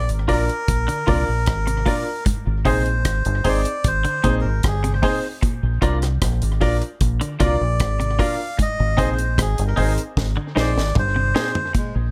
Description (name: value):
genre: roots reggae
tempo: 76 BPM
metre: 4/4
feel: straight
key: unclear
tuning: A4 = 440 Hz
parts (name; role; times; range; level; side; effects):
- melodica; melody; 0.0-11.9 s; Ab3 to F5; -28 LUFS; equal; dub echo, plate reverb
- deep dub fingered electric bass; bass; 0.0-12.1 s; G1 to C2; -24 LUFS; equal; none
- deep reggae drum kit; drums; 0.1-11.9 s; hi-hat, kick drum, rim click, snare drum, toms; -25 LUFS; equal; none
- twangy electric guitar; accompaniment; 0.3-11.5 s; Eb4 to D5; -32 LUFS; equal; dub echo, plate reverb
- warm upright piano; stabs; 0.3-11.6 s; C4 to D5; -27 LUFS; equal; plate reverb
- semi-hollow electric guitar; arpeggios; 0.9-11.9 s; Ab2 to D3; -31 LUFS; equal; spring reverb, plate reverb
room: light reverb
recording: none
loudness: -20 LUFS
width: mono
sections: 0.0-11.7 A section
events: melodica solo 0.0-11.7; drum fill 10.2-11.7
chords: 0.0 Bb; 2.3 Ab; 5.4 Bb; 8.6 Ab